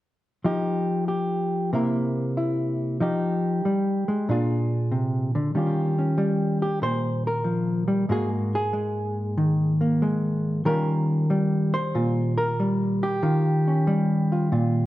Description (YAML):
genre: solo jazz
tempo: 94 BPM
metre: 4/4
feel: swing 67% on 8ths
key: Eb mixolydian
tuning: A4 = 442 Hz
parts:
  - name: hollow-body jazz guitar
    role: solo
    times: 0.4-14.9 s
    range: Ab2 to C5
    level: -22 LUFS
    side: equal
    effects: none
room: moderate echo chamber reverb, RT60 1.5 s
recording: worn, warbling old tape, cassette tape, warbly pitch drift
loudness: -22 LUFS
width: side -15 dB against mid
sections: 0.4-5.5 A section; 5.5-14.9 B section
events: none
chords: 0.4 Fsus2; 1.7 C7; 3.0 Fm9; 4.3 Bb7; 5.5 Eb9; 8.1 Absus2; 10.7 Eb9